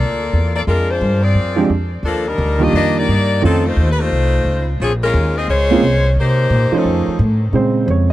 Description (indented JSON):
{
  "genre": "jazz, big band swing",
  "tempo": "175 BPM",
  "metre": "4/4",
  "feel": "swing 63% on 8ths",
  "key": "unclear",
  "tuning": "A4 = 436 Hz",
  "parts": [
    { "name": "edgy saxophone section", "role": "melody", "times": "0.0-7.2 s", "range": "Eb3 to Eb5", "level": "-18 LUFS", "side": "left 2 dB", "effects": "tape echo" },
    { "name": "upright bass", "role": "bass", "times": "0.0-8.1 s", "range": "Bb1 to C3", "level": "-16 LUFS", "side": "equal", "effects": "none" },
    { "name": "warm concert grand piano", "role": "accompaniment", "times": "1.6-3.6, 5.7-8.1 s", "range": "Db3 to Db5", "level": "-16 LUFS", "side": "right 4 dB", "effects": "none" }
  ],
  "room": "little or no reverb",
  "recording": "dry, close 1970s-style studio recording",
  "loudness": "-13 LUFS",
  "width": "side -15 dB against mid",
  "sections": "0.0-7.5 A section",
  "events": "none",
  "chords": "0.0 Bbmaj7; 0.7 Fm69; 2.1 Ebmaj7; 3.4 F7b13; 4.8 Bbm9; 6.2 Cm7; 6.9 F7alt; 7.5 Bbm7"
}